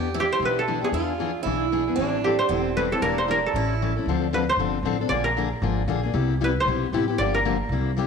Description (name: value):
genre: acoustic string swing (jazz manouche)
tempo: 230 BPM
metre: 4/4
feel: swing 58% on 8ths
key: A minor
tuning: A4 = 439 Hz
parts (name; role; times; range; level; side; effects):
- koto; melody; 0.0-8.1 s; G4 to D5; -25 LUFS; right 1 dB; none
- picked swing-style acoustic guitar; second line; 0.0-3.9 s; C4 to G4; -28 LUFS; right 10 dB; none
- picked steel-string acoustic guitar; accompaniment; 0.0-8.1 s; C3 to A4; -26 LUFS; left 8 dB; none
- upright bass; bass; 0.0-8.1 s; E1 to E2; -28 LUFS; right 1 dB; none
room: wet echo chamber reverb, RT60 1.6 s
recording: 1960s-style stereo with parts hard left and right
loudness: -21 LUFS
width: side -6 dB against mid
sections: 0.0-4.1 A section; 4.1-8.1 B section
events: none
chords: 0.0 Em7; 0.9 E7b9; 2.0 Am7; 3.0 Em7b5; 3.5 A7; 4.1 Dm7; 5.1 Bb7; 6.2 Cmaj7; 7.2 Gm7